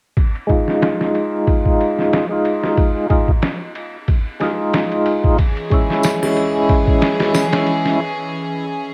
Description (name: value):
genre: trip hop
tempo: 92 BPM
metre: 4/4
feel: swing 55% on 16ths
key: F minor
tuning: A4 = 440 Hz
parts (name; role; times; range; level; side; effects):
- trip hop sampler-style drum kit; drums; 0.2-8.0 s; kick drum, ride cymbal, snare drum; -21 LUFS; equal; low-pass filter on cymbals, cassette tape, low-pass filter on kick, low-pass filter on snare, low-pass filter on room
- percussive tonewheel organ; accompaniment; 0.5-8.0 s; Ab3 to F4; -20 LUFS; equal; slow rotary speaker, tremolo, low-pass filter, cassette tape, tape echo
- clear studio string section; sustained chords; 5.4-8.9 s; Fb3 to Ab4; -25 LUFS; equal; cassette tape
- tambourine and triangle; percussion; 6.0-7.5 s; none; -34 LUFS; equal; none
room: light reverb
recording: home recording on cassette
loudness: -17 LUFS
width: mono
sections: 0.2-8.9 A section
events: filter sweep on tonewheel organ 0.2-8.9; break 8.0-8.9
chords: 0.2 Fm7; 5.4 Dbm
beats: | 0.17 0.82 1.48 2.13 | 2.78 3.43 4.08 4.74 | 5.39 6.04 6.69 7.35 | 8.00 8.65